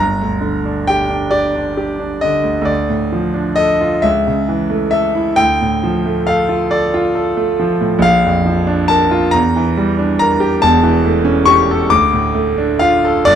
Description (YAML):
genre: classical, romantic nocturne for solo piano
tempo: 45 BPM (dotted quarters)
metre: 6/8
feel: rubato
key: D minor from 8.0 s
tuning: A4 = 441 Hz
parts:
  - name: bright concert grand piano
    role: solo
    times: 0.0-13.4 s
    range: E1 to D6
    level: -12 LUFS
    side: equal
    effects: none
room: moderate recital hall reverb, RT60 1.4 s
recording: close, detailed microphones, faint mains hum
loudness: -12 LUFS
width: side -9 dB against mid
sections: 0.0-13.4 A section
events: none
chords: 0.0 Gm; 2.7 Dm; 4.1 A/C#; 5.4 Dm; 8.0 Bb; 9.3 Em7b5; 10.6 A7/E; 11.9 Dm